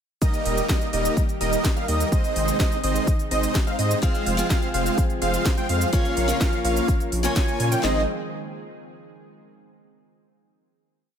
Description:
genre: EDM, festival progressive house.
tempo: 126 BPM.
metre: 4/4.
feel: straight.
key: Ab major.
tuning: A4 = 439 Hz.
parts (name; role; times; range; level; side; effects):
lush unison pad; sustained chords; 0.2-8.1 s; C3 to Ab4; -33 LUFS; equal; chorus, sidechain pumping.
wide unison lead; arpeggios; 0.2-8.0 s; Eb5 to Ab5; -28 LUFS; right 1 dB; analog chorus, cassette tape, sidechain pumping, tape echo.
big supersaw lead; riff; 0.2-8.0 s; G3 to Ab5; -27 LUFS; right 1 dB; sidechain pumping, tape echo.
house drum kit; drums; 0.2-7.9 s; handclaps, kick drum, snare drum; -23 LUFS; equal; none.
house drum kit; drums; 0.2-7.8 s; cabasa, hi-hat, snare drum; -30 LUFS; equal; none.
saturated sub bass; bass; 0.5-8.1 s; Eb1 to Bb2; -25 LUFS; equal; sidechain pumping.
picked acoustic archtop guitar; accompaniment; 4.0-8.0 s; C4 to Db5; -29 LUFS; left 3 dB; sidechain pumping, tape echo.
room: digital ambience.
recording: none.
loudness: -20 LUFS.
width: side -8 dB against mid.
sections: 0.2-7.8 drop; 7.8-9.7 final chord.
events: drop 0.2-7.8.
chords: 0.2 Eb; 2.1 Ab; 4.0 Fm; 5.9 Bbm; 7.8 Ab.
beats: | 0.22 0.69 1.17 1.65 | 2.12 2.60 3.07 3.55 | 4.03 4.50 4.98 5.46 | 5.93 6.41 6.88 7.36 | 7.84.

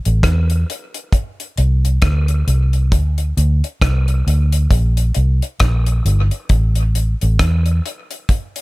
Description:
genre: dub reggae.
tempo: 67 BPM.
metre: 4/4.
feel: swing 60% on 16ths.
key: unclear.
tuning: A4 = 440 Hz.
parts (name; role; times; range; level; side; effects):
vintage muted fingered electric bass; bass; 0.1-7.8 s; G1 to E2; -14 LUFS; equal; none.
damped 70s drum kit; drums; 0.1-8.6 s; hi-hat, kick drum, rim click; -18 LUFS; equal; none.
room: little or no reverb.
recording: none.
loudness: -14 LUFS.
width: side -22 dB against mid.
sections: 0.0-8.6 A section.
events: none.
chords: none.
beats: 0.24 1.13 2.03 | 2.92 3.82 4.71 5.61 | 6.50 7.40 8.29.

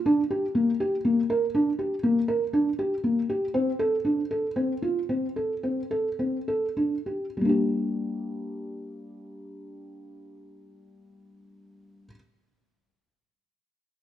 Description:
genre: contemporary instrumental, contemporary.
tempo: 97-120 BPM.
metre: 7/4.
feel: straight.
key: G minor.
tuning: A4 = 440 Hz.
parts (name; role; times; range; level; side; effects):
felt-muted upright piano; solo; 0.1-12.1 s; G3 to Bb4; -24 LUFS; equal; none.
room: moderate recital hall reverb, RT60 1.5 s.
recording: dark, warm production.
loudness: -24 LUFS.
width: side -11 dB against mid.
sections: 0.1-7.4 A section; 7.4-11.7 B section.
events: slowing down 3.0-7.4.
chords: 0.1 Gm; 3.5 D7(no3); 7.4 Gm.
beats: | 0.05 0.55 1.05 1.55 2.05 2.54 3.04 | 3.55 4.05 4.57 5.10 5.64 6.20 6.78 | 7.38 8.00 8.61 9.23 9.85 10.46 11.08.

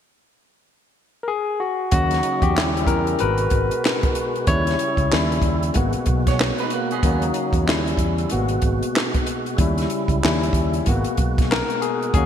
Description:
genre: R&B, neo-soul.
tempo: 94 BPM.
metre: 4/4.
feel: swing 62% on 16ths.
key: G# minor.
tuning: A4 = 442 Hz.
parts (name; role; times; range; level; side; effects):
barky tine electric piano; accompaniment; 1.2-12.3 s; G3 to C#5; -23 LUFS; left 4 dB; medium stereo tremolo.
tonewheel organ; sustained chords; 1.9-12.3 s; B2 to F#4; -28 LUFS; right 3 dB; slow rotary speaker, chorus vibrato.
fretless electric bass; bass; 1.9-12.3 s; G#1 to E2; -23 LUFS; right 1 dB; none.
compact cocktail drum kit; drums; 1.9-12.3 s; handclaps, hi-hat, kick drum, snare drum; -22 LUFS; right 1 dB; gated reverb.
electric guitar through a small old amp; second line; 6.3-7.2 s; A#3 to C#5; -28 LUFS; right 7 dB; lush chorus, digital delay.
room: moderate lush hall reverb, RT60 2.4 s.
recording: bright 1980s-style digital production.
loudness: -18 LUFS.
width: side -9 dB against mid.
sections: 0.0-1.9 A section; 1.9-12.3 B section.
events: tine electric piano solo 1.9-12.3.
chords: 0.0 N.C.; 1.9 D#m7; 2.6 D#7b9; 3.2 G#m7; 4.5 D#7b9; 5.8 G#m7; 7.0 D#m7; 7.7 D#7b9; 8.3 G#m7; 9.6 D#7b9; 10.9 G#m7.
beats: 0.01 0.64 1.28 | 1.92 2.56 3.20 3.83 | 4.47 5.11 5.75 6.39 | 7.03 7.67 8.30 8.94 | 9.58 10.22 10.86 11.49 | 12.13.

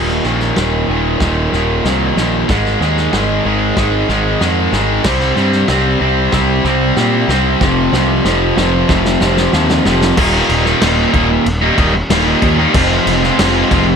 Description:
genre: post-rock.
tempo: 94 BPM.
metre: 4/4.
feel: straight.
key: Eb major.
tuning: A4 = 440 Hz.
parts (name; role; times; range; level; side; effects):
distorted electric guitar; riff; 0.0-14.0 s; Eb2 to F4; -13 LUFS; equal; overdrive.
fuzz picked electric bass; bass; 0.0-13.9 s; Eb1 to Bb2; -17 LUFS; equal; overdrive.
loose indie drum kit; drums; 0.1-13.9 s; crash cymbal, kick drum, snare drum; -19 LUFS; equal; none.
room: light reverb, small room ambience.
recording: none.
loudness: -11 LUFS.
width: side -6 dB against mid.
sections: 0.0-10.2 A section; 10.2-14.0 B section.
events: build-up 0.0-10.2; drum fill 7.6-10.2.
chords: 0.0 Eb5; 2.5 Ab5; 5.1 C5; 7.6 F5; 10.2 Eb; 12.7 Fm.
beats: 0.57 1.21 1.85 | 2.49 3.13 3.77 4.41 | 5.05 5.69 6.33 6.97 | 7.61 8.25 8.89 9.53 | 10.17 10.82 11.46 12.10 | 12.74 13.39.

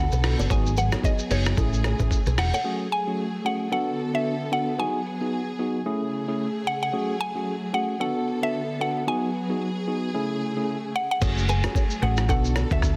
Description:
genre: afrobeats.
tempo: 112 BPM.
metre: 4/4.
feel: swing 58% on 16ths.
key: F# minor.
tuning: A4 = 440 Hz.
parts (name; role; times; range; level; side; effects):
mallet-like synth pluck; melody; 0.0-13.0 s; C#5 to G#5; -31 LUFS; equal; chorus.
tine electric piano; accompaniment; 0.0-12.9 s; A3 to A4; -31 LUFS; equal; none.
warm studio string section; sustained chords; 0.0-13.0 s; C#3 to A4; -34 LUFS; equal; none.
hollow-body short-scale fingered electric bass; bass; 0.0-2.5, 11.2-12.9 s; E1 to D2; -26 LUFS; equal; none.
nylon-string guitar; riff; 0.1-2.6, 11.2-12.8 s; E4 to D5; -38 LUFS; equal; digital delay.
lo-fi sampler-style drum kit; drums; 0.1-2.6, 11.2-13.0 s; crash cymbal, hi-hat, kick drum, rim click, shaker; -28 LUFS; equal; soft clipping on snare.
room: light reverb.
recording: dense, heavily limited modern master.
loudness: -25 LUFS.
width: mono.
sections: 0.0-2.6 A section; 2.6-11.2 B section; 11.2-13.0 A section.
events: none.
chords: 0.0 Bm7; 0.5 G#m7; 1.6 Amaj7; 2.6 F#madd9; 3.7 Bm7; 4.8 G#m7; 5.9 Amaj7; 6.9 F#madd9; 8.0 Bm7; 9.1 G#m7; 10.1 Amaj7; 11.2 F#madd9; 12.3 Bm7.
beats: | 0.50 1.04 1.57 2.11 | 2.64 3.18 3.72 4.25 | 4.79 5.32 5.86 6.39 | 6.93 7.47 8.00 8.54 | 9.07 9.61 10.14 10.68 | 11.22 11.75 12.29 12.82.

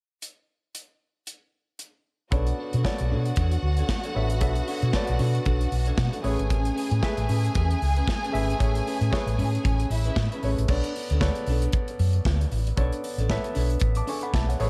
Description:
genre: disco.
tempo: 115 BPM.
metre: 4/4.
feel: swing 56% on 16ths.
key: B dorian.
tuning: A4 = 438 Hz.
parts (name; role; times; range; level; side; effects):
modern studio drum kit; drums; 0.2-14.7 s; crash cymbal, hi-hat, kick drum, snare drum; -31 LUFS; equal; gated reverb.
clear symphonic string section; second line; 2.3-10.4 s; E4 to G#5; -36 LUFS; equal; none.
electric guitar at the edge of break-up; accompaniment; 2.3-14.5 s; C#4 to C#5; -36 LUFS; equal; none.
warm concert grand piano; accompaniment; 2.3-14.7 s; A3 to D6; -35 LUFS; equal; none.
hollow-body short-scale fingered electric bass; bass; 2.3-14.7 s; G#1 to B2; -26 LUFS; equal; none.
room: little or no reverb.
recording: none.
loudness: -25 LUFS.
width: mono.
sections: 0.2-2.3 A section; 2.3-10.7 B section; 10.7-14.7 C section.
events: none.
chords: 0.2 N.C.; 2.3 Bm9; 6.2 Amaj9; 10.7 Bm9.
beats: | 0.23 0.75 1.27 1.80 | 2.32 2.85 3.37 3.89 | 4.42 4.94 5.46 5.99 | 6.51 7.03 7.55 8.08 | 8.60 9.12 9.64 10.16 | 10.69 11.21 11.73 12.25 | 12.77 13.29 13.82 14.34.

